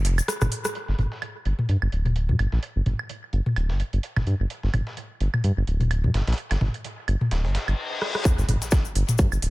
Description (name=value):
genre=minimal techno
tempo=128 BPM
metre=4/4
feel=swing 56% on 16ths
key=G minor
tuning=A4 = 440 Hz
part: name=round analog bass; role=bass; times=0.0-9.5 s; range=D1 to G2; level=-22 LUFS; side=equal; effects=sidechain pumping
part: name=dusty soul sampler-style drum kit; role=drums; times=0.0-9.5 s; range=hi-hat, snare drum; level=-38 LUFS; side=right 2 dB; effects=overdrive, sidechain pumping on hats, high-pass filter on hats, low-pass filter on hats, studio reverb, high-pass filter on snare, low-pass filter on snare, analog delay
part: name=minimal click drum kit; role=drums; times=0.0-0.7, 8.0-9.5 s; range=hi-hat, rim click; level=-30 LUFS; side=equal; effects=low-pass filter on hats, studio reverb, low-pass filter on snare, analog delay
part: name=cabasa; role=percussion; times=0.2-0.7, 8.3-9.4 s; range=none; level=-34 LUFS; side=left 9 dB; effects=none
part: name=electronic woodblock and toms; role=percussion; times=0.2-9.4 s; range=none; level=-27 LUFS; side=equal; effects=studio reverb, tape echo
part: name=reverse cymbal and sub drop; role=sound effects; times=7.5-9.5 s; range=none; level=-31 LUFS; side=left 2 dB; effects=none
part: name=electronic kick drum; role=drums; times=8.3-9.3 s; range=none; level=-19 LUFS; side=equal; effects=studio reverb
room=little or no reverb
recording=echo-heavy mix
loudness=-22 LUFS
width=side -20 dB against mid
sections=0.8-8.3 A section; 8.3-9.5 B section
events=break 0.0-0.8; drum fill 0.3-0.8, 8.0; reverse cymbal 7.5-8.3; stop 7.8-8.3; drop 8.3-9.5; impact 8.3-9.5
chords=none